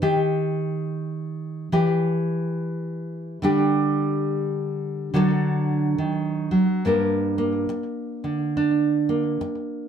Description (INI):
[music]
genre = folk, solo fingerstyle acoustic guitar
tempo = 70 BPM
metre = 4/4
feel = swing 62% on 8ths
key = G minor from 6.8 s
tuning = A4 = 443 Hz
[part]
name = nylon-string guitar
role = solo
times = 0.0-9.9 s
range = G2 to Bb4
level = -21 LUFS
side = right 1 dB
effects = slapback echo
[sound]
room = moderate studio reverb, RT60 0.6 s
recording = none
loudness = -21 LUFS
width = side -8 dB against mid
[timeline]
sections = 0.0-6.8 A section; 6.8-9.9 B section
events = none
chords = 0.0 Eb; 1.7 Em; 3.4 Dsus4; 5.1 D; 6.8 Gm